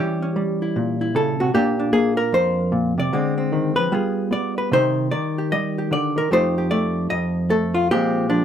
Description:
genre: solo jazz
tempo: 151 BPM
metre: 4/4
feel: swing 64% on 8ths, rubato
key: unclear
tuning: A4 = 441 Hz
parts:
  - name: hollow-body jazz guitar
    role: solo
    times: 0.0-8.4 s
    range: F2 to Eb5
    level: -18 LUFS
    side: equal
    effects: none
room: light reverb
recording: none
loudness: -18 LUFS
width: side -9 dB against mid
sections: 0.0-8.4 A section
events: none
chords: 0.0 Edim7; 1.5 Bb69; 3.1 Dm7b5; 3.9 G7b9; 4.7 Cm; 6.3 F13; 7.9 Bb13

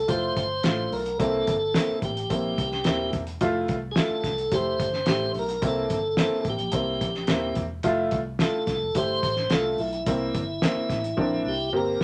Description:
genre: uptempo 1960s-style soul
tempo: 108 BPM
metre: 4/4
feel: straight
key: F major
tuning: A4 = 440 Hz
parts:
  - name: tonewheel organ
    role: melody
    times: 0.0-12.0 s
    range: E4 to C5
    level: -29 LUFS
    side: equal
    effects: overdrive, slow rotary speaker
  - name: vintage muted fingered electric bass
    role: bass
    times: 0.0-12.0 s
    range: Eb1 to C2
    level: -38 LUFS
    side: equal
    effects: none
  - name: warm upright piano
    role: accompaniment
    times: 0.1-12.0 s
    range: A3 to G4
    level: -30 LUFS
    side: equal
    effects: none
  - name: cloth-damped thuddy drum kit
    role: drums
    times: 0.1-12.0 s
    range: hi-hat, kick drum, snare drum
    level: -30 LUFS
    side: equal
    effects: none
room: moderate studio ambience, RT60 0.5 s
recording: none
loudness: -26 LUFS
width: mono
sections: 0.0-12.0 A section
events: drum fill 11.2-12.0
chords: 0.0 Fmaj7; 1.2 C7; 3.4 Fmaj7; 5.6 C7; 7.9 Fmaj7; 10.1 C7

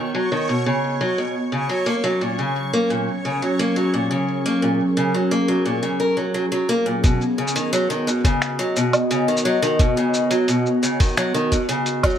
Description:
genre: folktronica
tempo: 87 BPM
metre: 4/4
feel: straight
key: unclear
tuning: A4 = 438 Hz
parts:
  - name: warbly tape-like pad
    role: sustained chords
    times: 0.0-12.2 s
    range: F#3 to D#5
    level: -23 LUFS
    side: equal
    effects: chorus, built-in reverb, plate reverb
  - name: picked acoustic archtop guitar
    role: arpeggios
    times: 0.0-12.2 s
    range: A#2 to A#4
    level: -21 LUFS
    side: equal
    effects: low-pass filter, ping-pong delay, plate reverb
  - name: backwards swelling texture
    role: texture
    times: 0.0-7.1 s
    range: C#5 to C#6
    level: -32 LUFS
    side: right 2 dB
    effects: built-in reverb, plate reverb
  - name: electronic kick drum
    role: drums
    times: 7.0-12.2 s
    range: none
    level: -18 LUFS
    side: equal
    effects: small room ambience
  - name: lo-fi sampler-style drum kit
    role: drums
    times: 7.0-12.2 s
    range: cabasa, finger snaps, hi-hat, woodblock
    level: -24 LUFS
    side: right 1 dB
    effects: small room ambience
room: moderate studio reverb, RT60 0.6 s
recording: vinyl crackle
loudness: -18 LUFS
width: side -9 dB against mid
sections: 0.0-7.0 A section; 7.0-12.2 B section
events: none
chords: 0.0 Badd9; 1.5 F#; 7.0 Badd9

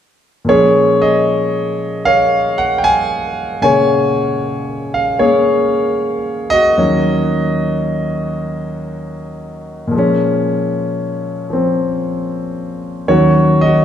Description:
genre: solo jazz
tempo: 76 BPM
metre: 4/4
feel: swing 68% on 8ths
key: Bb minor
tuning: A4 = 442 Hz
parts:
  - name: warm concert grand piano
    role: solo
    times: 0.4-13.8 s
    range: Eb2 to Ab5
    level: -13 LUFS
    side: equal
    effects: none
room: wet recital hall reverb, RT60 1.7 s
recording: recorded in a church or concert hall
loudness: -13 LUFS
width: side -9 dB against mid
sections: 0.5-13.8 A section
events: none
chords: 0.5 Bbm7; 6.8 Ebm7; 9.9 Bbm7; 13.1 Ebm7

